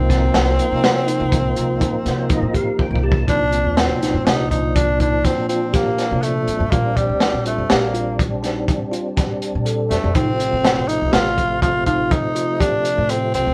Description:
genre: progressive instrumental, band music in an uneven meter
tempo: 122 BPM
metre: 7/4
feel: straight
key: C dorian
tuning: A4 = 440 Hz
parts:
  - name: growling tenor saxophone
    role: melody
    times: 0.0-13.5 s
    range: G3 to F4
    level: -24 LUFS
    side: equal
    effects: none
  - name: tonewheel organ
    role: accompaniment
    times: 0.0-13.5 s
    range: Bb2 to A5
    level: -27 LUFS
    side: equal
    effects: overdrive, chorus vibrato, slow rotary speaker
  - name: upright bass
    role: bass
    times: 0.0-13.5 s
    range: A1 to C3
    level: -25 LUFS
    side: equal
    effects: none
  - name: bell-like tine electric piano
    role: arpeggios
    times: 0.1-13.4 s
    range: C4 to A4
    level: -28 LUFS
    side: equal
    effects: phaser
  - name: crunchy breakbeat drum kit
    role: drums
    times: 0.1-13.5 s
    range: hi-hat, kick drum, snare drum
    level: -23 LUFS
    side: equal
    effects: none
room: light reverb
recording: band playing live in one room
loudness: -19 LUFS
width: mono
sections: 0.0-3.3 A section; 3.3-13.5 B section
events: tonewheel organ fill 1.8-3.3; drum fill 2.8-3.3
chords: 0.0 Cm7; 6.7 Bb; 10.2 F7/A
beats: 0.34 0.83 1.32 1.81 2.30 2.79 | 3.28 3.77 4.27 4.76 5.25 5.74 6.23 | 6.72 7.21 7.70 8.19 8.68 9.17 9.66 | 10.15 10.64 11.13 11.62 12.11 12.60 13.09

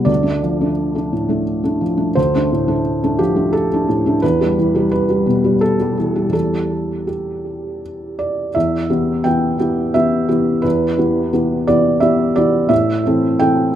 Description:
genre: neoclassical minimalist piano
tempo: 86 BPM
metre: 3/4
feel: rubato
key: unclear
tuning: A4 = 439 Hz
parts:
  - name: felt-muted upright piano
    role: solo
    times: 0.0-13.8 s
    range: D2 to G5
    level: -14 LUFS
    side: equal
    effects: analog delay
room: moderate studio reverb, RT60 0.6 s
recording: rough home demo mix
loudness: -14 LUFS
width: side -10 dB against mid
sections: 0.0-8.5 A section; 8.5-13.8 B section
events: none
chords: 0.1 Dm; 4.2 Em; 12.7 Am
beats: | 0.09 0.79 1.49 | 2.17 2.85 3.54 | 4.22 4.91 5.61 | 6.33 7.08 7.82 | 8.55 9.25 9.95 | 10.64 11.34 12.02 | 12.71 13.38

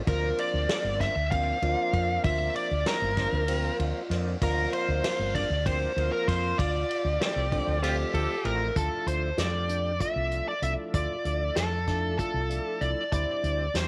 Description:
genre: progressive instrumental, band music in an uneven meter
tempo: 193 BPM (eighths)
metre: 7/8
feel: straight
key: D minor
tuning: A4 = 440 Hz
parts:
  - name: tonewheel organ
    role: accompaniment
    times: 0.0-13.9 s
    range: F3 to E5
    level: -38 LUFS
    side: equal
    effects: chorus vibrato, slow rotary speaker
  - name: smooth overdriven lead guitar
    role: melody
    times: 0.1-13.9 s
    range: G4 to F5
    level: -32 LUFS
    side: equal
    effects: tape echo
  - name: bright tine electric piano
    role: arpeggios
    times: 0.1-13.6 s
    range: C4 to F4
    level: -40 LUFS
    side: equal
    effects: phaser
  - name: woody fretless electric bass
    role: bass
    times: 0.1-13.9 s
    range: G1 to F2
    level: -32 LUFS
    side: equal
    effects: none
  - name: unplugged drum kit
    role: drums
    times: 0.1-13.9 s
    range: hi-hat, kick drum, ride cymbal, snare drum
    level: -36 LUFS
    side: equal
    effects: none
  - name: bright alto saxophone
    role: second line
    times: 7.2-8.7 s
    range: F4 to A4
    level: -38 LUFS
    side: equal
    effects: none
room: small room ambience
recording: none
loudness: -28 LUFS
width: mono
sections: 0.0-8.8 A section; 8.8-13.9 B section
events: none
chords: 0.1 Bbadd9; 6.6 Dm7; 8.8 Dmadd9; 13.1 Cadd9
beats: | 0.07 0.38 0.69 1.00 1.31 1.62 1.93 | 2.24 2.55 2.86 3.17 3.48 3.79 4.10 | 4.41 4.72 5.03 5.34 5.66 5.96 6.28 | 6.59 6.90 7.21 7.52 7.83 8.14 8.45 | 8.76 9.07 9.38 9.70 10.01 10.32 10.63 | 10.94 11.25 11.56 11.88 12.19 12.50 12.81 | 13.12 13.44 13.75

